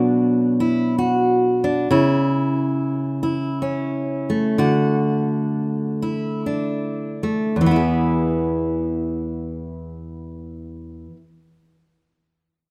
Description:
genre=folk, solo fingerstyle acoustic guitar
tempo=74-92 BPM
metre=4/4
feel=swing 58% on 8ths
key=E mixolydian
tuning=A4 = 437 Hz
part: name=fingerpicked steel-string acoustic guitar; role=solo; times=0.0-11.3 s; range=E2 to G#4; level=-21 LUFS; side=equal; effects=none
room=light reverb, small room ambience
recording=rough home demo mix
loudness=-21 LUFS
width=mono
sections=0.0-7.6 A section; 7.6-10.8 B section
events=slowing down 1.9-7.6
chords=0.0 Bm; 1.9 A/C# (rootless); 4.6 D; 7.6 E

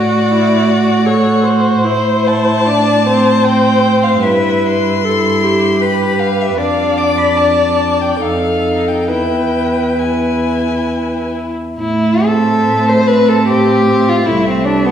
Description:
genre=classical, slow romantic movement for string quartet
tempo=63-81 BPM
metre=3/4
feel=rubato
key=A minor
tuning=A4 = 439 Hz
part: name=rich violin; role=melody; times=0.0-14.9 s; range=C5 to D6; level=-20 LUFS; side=left 5 dB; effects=none
part: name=warm violin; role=second line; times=0.0-14.9 s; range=B3 to C5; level=-17 LUFS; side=left 2 dB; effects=none
part: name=rich viola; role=accompaniment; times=0.0-14.9 s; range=A3 to D5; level=-16 LUFS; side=left 1 dB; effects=none
part: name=warm cello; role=bass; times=0.0-14.9 s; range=C2 to A2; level=-16 LUFS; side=right 3 dB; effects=none
room=wet recital hall reverb, RT60 1.4 s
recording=heard from further back in the room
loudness=-11 LUFS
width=side -9 dB against mid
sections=0.0-11.8 A section; 11.8-14.9 B section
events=none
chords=0.0 F#m/A; 1.8 Am; 4.2 Em/G; 6.6 Dm/F; 8.2 F7; 9.1 E; 11.8 Am; 14.3 Am/C

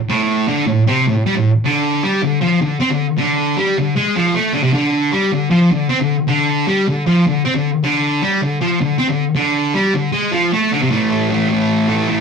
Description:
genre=rock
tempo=155 BPM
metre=4/4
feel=straight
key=unclear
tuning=A4 = 436 Hz
part: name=thick fuzz guitar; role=solo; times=0.1-12.2 s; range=A2 to C4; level=-14 LUFS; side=equal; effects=distortion
room=wet small room ambience, RT60 0.5 s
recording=rough rehearsal-room recording, warm saturation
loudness=-14 LUFS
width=side -6 dB against mid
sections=0.0-10.9 A section; 10.9-12.2 B section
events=none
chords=0.0 N.C.; 1.6 D5; 10.9 A5

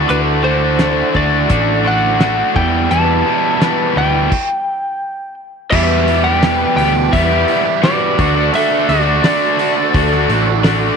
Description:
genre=classic rock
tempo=85 BPM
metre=4/4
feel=straight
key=unclear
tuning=A4 = 440 Hz
part: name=tonewheel organ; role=sustained chords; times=0.0-11.0 s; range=G3 to D5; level=-27 LUFS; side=left 1 dB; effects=none
part: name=distorted electric guitar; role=riff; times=0.0-11.0 s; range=E2 to G4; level=-18 LUFS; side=right 14 dB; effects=distortion
part: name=overdriven electric guitar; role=riff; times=0.0-11.0 s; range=E2 to G4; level=-19 LUFS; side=left 16 dB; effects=none
part: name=hollow-body short-scale picked electric bass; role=bass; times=0.0-10.9 s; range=A1 to E2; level=-18 LUFS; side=left 1 dB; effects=none
part: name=lightly driven lead guitar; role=melody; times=0.1-10.6 s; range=B4 to A5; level=-18 LUFS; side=equal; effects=slapback echo
part: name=picked twelve-string acoustic guitar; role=accompaniment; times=0.1-11.0 s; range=D3 to B4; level=-25 LUFS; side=left 13 dB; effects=none
part: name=damped 70s drum kit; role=drums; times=0.1-10.8 s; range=crash cymbal, hi-hat, kick drum, snare drum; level=-18 LUFS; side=equal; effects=none
part: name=smooth overdriven lead guitar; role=second line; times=5.7-10.6 s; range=F#4 to B4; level=-23 LUFS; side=right 11 dB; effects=none
room=light reverb, studio ambience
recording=1960s-style stereo with parts hard left and right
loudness=-12 LUFS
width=side -6 dB against mid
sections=0.0-5.7 A section; 5.7-11.0 B section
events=stop 4.3-5.7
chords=0.0 Dadd9; 2.6 Em7; 8.2 D

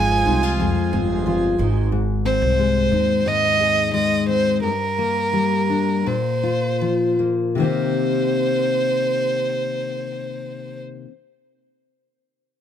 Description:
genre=acoustic pop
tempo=77-90 BPM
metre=4/4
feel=straight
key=C minor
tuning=A4 = 439 Hz
part: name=rich violin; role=melody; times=0.0-10.8 s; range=Bb4 to Ab5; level=-21 LUFS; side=right 2 dB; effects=none
part: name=fingerpicked steel-string acoustic guitar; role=accompaniment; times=0.0-11.1 s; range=F2 to Ab4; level=-21 LUFS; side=left 4 dB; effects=none
part: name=hand-pumped harmonium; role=sustained chords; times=0.0-1.9 s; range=Ab3 to Ab5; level=-29 LUFS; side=right 3 dB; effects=none
part: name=nylon-string guitar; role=arpeggios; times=0.0-2.5 s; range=Eb3 to F4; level=-29 LUFS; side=right 9 dB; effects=none
part: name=upright bass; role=bass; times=0.0-4.6 s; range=G1 to Eb2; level=-23 LUFS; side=right 1 dB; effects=none
room=little or no reverb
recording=none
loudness=-18 LUFS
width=side -9 dB against mid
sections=0.0-7.6 A section; 7.6-10.7 B section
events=slowing down 1.9-7.6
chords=0.0 Fm; 1.6 Ab; 4.6 Gm; 6.1 Bbsus2; 7.6 Cm7

